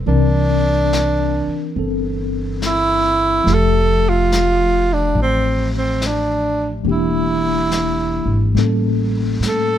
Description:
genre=jazz ballad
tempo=71 BPM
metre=4/4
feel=swing 66% on 8ths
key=unclear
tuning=A4 = 440 Hz
part: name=tine electric piano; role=accompaniment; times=0.0-9.8 s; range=E3 to E5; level=-21 LUFS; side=left 2 dB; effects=medium stereo tremolo
part: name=breathy tenor saxophone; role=melody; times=0.1-9.8 s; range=C4 to A4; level=-18 LUFS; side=right 2 dB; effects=none
part: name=upright bass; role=bass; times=0.1-9.8 s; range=E1 to A2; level=-20 LUFS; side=equal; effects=none
part: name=vintage brush drum kit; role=drums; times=0.1-9.8 s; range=brushed snare drum, hi-hat, snare drum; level=-29 LUFS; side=left 3 dB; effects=none
room=little or no reverb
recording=close, detailed microphones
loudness=-15 LUFS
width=side -10 dB against mid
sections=0.0-9.8 A section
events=none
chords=0.1 C9; 3.5 Fmaj9; 6.9 Em7b5; 8.6 A7b9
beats=| 0.06 0.91 1.76 2.61 | 3.46 4.31 5.15 6.00 | 6.85 7.70 8.56 9.42

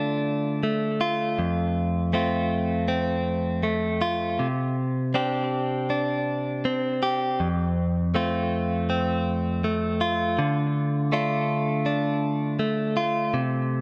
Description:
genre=pop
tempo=80 BPM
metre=4/4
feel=straight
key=F major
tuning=A4 = 436 Hz
part: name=direct-recorded clean electric guitar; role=solo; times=0.0-13.8 s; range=F2 to G4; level=-25 LUFS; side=equal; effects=tape echo
room=moderate spring reverb, RT60 1.8 s, digital ambience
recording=echo-heavy mix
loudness=-25 LUFS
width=mono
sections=0.0-13.8 A section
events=none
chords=0.0 Dm; 1.4 F; 4.4 Csus2; 7.4 F; 10.4 Dm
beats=0.64 | 1.39 2.13 2.88 3.64 | 4.40 5.15 5.91 6.66 | 7.40 8.15 8.89 9.64 | 10.38 11.12 11.86 12.59 | 13.34

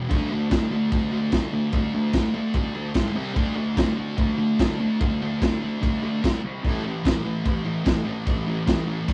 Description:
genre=garage rock duo or trio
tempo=147 BPM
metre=4/4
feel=straight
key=unclear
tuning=A4 = 440 Hz
part: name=thick fuzz guitar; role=riff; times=0.0-9.1 s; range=G#2 to D4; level=-27 LUFS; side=equal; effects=distortion
part: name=crunchy breakbeat drum kit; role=drums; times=0.1-9.1 s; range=crash cymbal, kick drum, snare drum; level=-27 LUFS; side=equal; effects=none
room=moderate small room reverb, RT60 0.5 s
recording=rough rehearsal-room recording, cassette tape, nothing above 10.7 kHz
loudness=-24 LUFS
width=mono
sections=0.0-9.1 A section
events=none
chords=0.1 D5; 3.0 G#5; 3.2 C5; 3.4 D5; 6.4 C5; 6.6 A5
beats=| 0.11 0.52 0.93 1.34 | 1.75 2.15 2.56 2.97 | 3.38 3.79 4.19 4.60 | 5.01 5.42 5.83 6.24 | 6.64 7.05 7.46 7.87 | 8.28 8.68 9.09

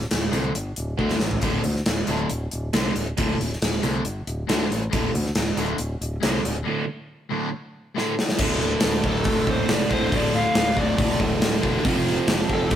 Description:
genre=hard rock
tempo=138 BPM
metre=4/4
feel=straight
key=D minor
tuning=A4 = 441 Hz
part: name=modern bright fingered electric bass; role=bass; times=0.0-12.8 s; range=D1 to D2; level=-28 LUFS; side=equal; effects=none
part: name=gated 80s drum kit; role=drums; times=0.0-12.8 s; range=crash cymbal, hi-hat, kick drum, snare drum, toms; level=-24 LUFS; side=equal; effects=none
part: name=crunchy overdriven guitar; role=riff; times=0.3-12.8 s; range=D2 to F3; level=-30 LUFS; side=left 6 dB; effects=none
part: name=overdriven electric guitar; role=riff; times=0.3-12.8 s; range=D2 to F3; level=-27 LUFS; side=right 4 dB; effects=phaser
part: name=distorted electric guitar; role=riff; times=8.4-12.8 s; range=D2 to F3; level=-32 LUFS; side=equal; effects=overdrive
part: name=smooth overdriven lead guitar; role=melody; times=9.1-12.7 s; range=A4 to F5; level=-25 LUFS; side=left 1 dB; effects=none
room=moderate stone room reverb, RT60 1.2 s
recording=rough rehearsal-room recording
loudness=-21 LUFS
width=side -10 dB against mid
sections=0.0-8.4 A section; 8.4-12.8 B section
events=drum fill 1.0-1.4, 8.0-8.4; break 6.7-8.4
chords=0.0 D5; 11.8 F5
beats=0.12 0.56 0.99 | 1.43 1.87 2.31 2.75 | 3.18 3.62 4.06 4.49 | 4.93 5.36 5.79 6.23 | 6.66 7.10 7.53 7.96 | 8.39 8.82 9.26 9.69 | 10.12 10.55 10.98 11.41 | 11.84 12.28 12.71

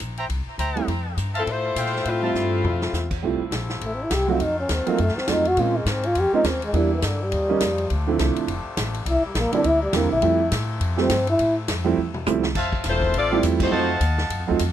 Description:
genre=jazz, big band swing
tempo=206 BPM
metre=4/4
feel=swing 59% on 8ths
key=F major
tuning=A4 = 440 Hz
part: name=upright bass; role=bass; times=0.0-14.7 s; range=E1 to Bb2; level=-26 LUFS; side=left 1 dB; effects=none
part: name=swinging big-band drum kit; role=drums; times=0.0-14.7 s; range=crash cymbal, hi-hat, kick drum, ride cymbal, snare drum, toms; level=-30 LUFS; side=equal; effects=none
part: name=clear trumpet section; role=stabs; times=0.2-2.3, 12.6-14.5 s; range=C5 to Bb5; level=-29 LUFS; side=equal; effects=tape echo
part: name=warm upright piano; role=accompaniment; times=0.8-14.6 s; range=D3 to E5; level=-23 LUFS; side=right 8 dB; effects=none
part: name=warm saxophone section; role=melody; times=1.4-3.1, 12.9-14.0 s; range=F3 to D5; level=-23 LUFS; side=left 4 dB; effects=none
part: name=muted trombone section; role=sustained chords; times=3.2-12.5 s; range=C3 to F4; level=-34 LUFS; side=left 3 dB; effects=none
part: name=trombone with cup mute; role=melody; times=3.9-11.6 s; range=D3 to G4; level=-22 LUFS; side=left 1 dB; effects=none
room=little or no reverb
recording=dry, close 1970s-style studio recording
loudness=-20 LUFS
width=side -11 dB against mid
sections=0.0-3.2 A section; 3.2-12.6 B section; 12.6-14.7 A section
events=drum fill 2.3-2.9, 12.0-12.6; trombone solo 3.2-12.6; band accent 13.6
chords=0.0 C7; 0.9 Fmaj7; 4.4 F7b9; 5.6 Bbm9; 6.7 Em7b5; 7.3 Eb9; 7.9 Dm7; 9.1 C7; 10.2 Fmaj7; 13.7 F7b9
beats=0.00 0.30 0.59 | 0.88 1.18 1.47 1.76 | 2.06 2.35 2.64 2.94 | 3.23 3.52 3.81 4.11 | 4.40 4.69 4.98 5.28 | 5.57 5.86 6.15 6.44 | 6.73 7.03 7.32 7.61 | 7.90 8.19 8.48 8.77 | 9.06 9.35 9.64 9.93 | 10.22 10.52 10.81 11.10 | 11.39 11.68 11.97 12.26 | 12.55 12.85 13.14 13.43 | 13.72 14.01 14.31 14.60

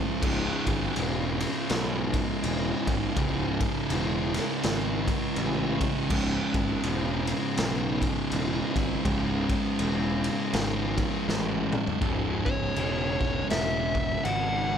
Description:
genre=stoner and doom metal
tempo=81 BPM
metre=4/4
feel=swing 60% on 8ths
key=C# minor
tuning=A4 = 436 Hz
part: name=thick fuzz guitar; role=riff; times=0.0-14.8 s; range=C#2 to C#3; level=-28 LUFS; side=right 1 dB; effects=distortion
part: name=fuzz picked electric bass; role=bass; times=0.2-14.8 s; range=C#1 to B1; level=-31 LUFS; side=equal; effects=overdrive
part: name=raw garage drum kit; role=drums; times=0.2-14.5 s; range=crash cymbal, kick drum, ride cymbal, snare drum, toms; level=-30 LUFS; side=equal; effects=none
part: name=fuzz lead guitar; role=melody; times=12.5-14.8 s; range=C#5 to F#5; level=-29 LUFS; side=left 1 dB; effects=distortion
room=small room ambience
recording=none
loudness=-25 LUFS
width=side -8 dB against mid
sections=0.0-12.0 A section; 12.0-14.8 B section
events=drum fill 11.3-12.0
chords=0.0 C#m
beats=| 0.24 0.97 1.70 2.44 | 3.17 3.90 4.64 5.37 | 6.11 6.84 7.58 8.32 | 9.06 9.80 10.54 11.28 | 12.02 12.76 13.51 14.25

